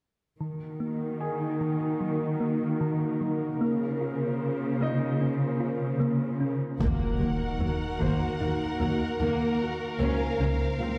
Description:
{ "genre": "cinematic, hybrid orchestral and electronic film score", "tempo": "75 BPM", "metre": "4/4", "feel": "straight", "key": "Eb dorian", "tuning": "A4 = 440 Hz", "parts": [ { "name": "warbly tape-like pad", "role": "sustained chords", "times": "0.7-11.0 s", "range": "Bb3 to F5", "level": "-35 LUFS", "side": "equal", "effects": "chorus, built-in reverb" }, { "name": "thumb-piano-like synth pluck", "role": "arpeggios", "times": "0.4-11.0 s", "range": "Eb3 to F4", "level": "-36 LUFS", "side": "equal", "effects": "chorus, delay" }, { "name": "warm symphonic cello section", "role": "bass", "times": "0.4-10.9 s", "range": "Db2 to Eb3", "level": "-33 LUFS", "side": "equal", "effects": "none" }, { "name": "bright baby grand piano", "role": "texture", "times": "1.2-11.0 s", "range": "Eb4 to Ab5", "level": "-44 LUFS", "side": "equal", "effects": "delay" }, { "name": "warm symphonic violin section", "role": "melody", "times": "6.8-11.0 s", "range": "F5 to Gb5", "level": "-41 LUFS", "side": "equal", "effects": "none" }, { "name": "warm symphonic violin section", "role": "second line", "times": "6.8-11.0 s", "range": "Bb4", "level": "-38 LUFS", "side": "equal", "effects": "none" }, { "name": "dark symphonic viola section", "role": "accompaniment", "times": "6.8-10.9 s", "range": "Gb3 to Db4", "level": "-38 LUFS", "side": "equal", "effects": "none" }, { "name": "dark French horn section", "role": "sustained chords", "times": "6.8-11.0 s", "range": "Gb4 to C5", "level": "-39 LUFS", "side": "equal", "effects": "none" }, { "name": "warm symphonic double bass section", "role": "bass", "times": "6.8-10.9 s", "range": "Db2 to Eb2", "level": "-34 LUFS", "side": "equal", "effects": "none" }, { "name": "taiko ensemble", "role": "drums", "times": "6.8-8.4 s", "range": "none", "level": "-36 LUFS", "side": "equal", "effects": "none" }, { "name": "impact", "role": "sound effects", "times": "6.8-10.0 s", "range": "none", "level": "-37 LUFS", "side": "equal", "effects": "none" } ], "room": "wet scoring stage reverb, RT60 1.6 s", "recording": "heard from further back in the room", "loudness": "-28 LUFS", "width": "mono", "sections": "0.4-6.8 A section; 6.8-11.0 B section", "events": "build-up 6.8-11.0; impact 6.8-10.0", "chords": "0.4 Ebm; 3.6 Bbmadd9/Db; 6.8 Ebm; 10.0 Bbmadd9/Db" }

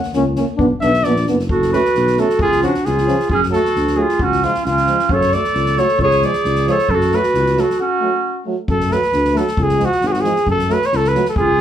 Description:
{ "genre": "balkan folk, Balkan brass band", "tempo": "134 BPM", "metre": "2/4", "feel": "straight", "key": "F# harmonic minor", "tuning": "A4 = 436 Hz", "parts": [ { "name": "mellow cornet", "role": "melody", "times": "0.0-11.6 s", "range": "E#4 to F#5", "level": "-17 LUFS", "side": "equal", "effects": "none" }, { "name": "soft-mallet drum kit", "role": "percussion", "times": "0.0-11.6 s", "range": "kick drum, snare drum", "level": "-25 LUFS", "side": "equal", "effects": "none" }, { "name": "warm trombone", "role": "accompaniment", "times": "0.1-11.6 s", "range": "G#3 to D4", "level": "-24 LUFS", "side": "left 4 dB", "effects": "none" }, { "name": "dark tuba", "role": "bass", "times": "0.1-11.6 s", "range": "F#1 to F#2", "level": "-20 LUFS", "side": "left 1 dB", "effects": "none" }, { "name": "mellow euphonium", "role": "accompaniment", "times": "0.2-11.2 s", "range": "E#3 to B3", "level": "-23 LUFS", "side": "right 5 dB", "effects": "none" }, { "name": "warm clarinet", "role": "second line", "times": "1.5-8.4, 11.4-11.6 s", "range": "C#4 to A4", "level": "-19 LUFS", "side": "right 4 dB", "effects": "none" } ], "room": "wet studio reverb, RT60 0.5 s", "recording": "heard from further back in the room", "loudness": "-14 LUFS", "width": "side -10 dB against mid", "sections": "0.0-1.5 A section; 1.5-8.7 B section; 8.7-11.6 B section", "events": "cornet solo 0.0-1.5; break 7.8-8.7", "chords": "0.0 F#; 0.6 Bm; 1.5 F#m; 2.4 C#; 3.3 F#m; 4.2 C#; 5.1 F#m; 6.0 C#; 6.9 F#m; 9.6 C#; 10.5 F#m" }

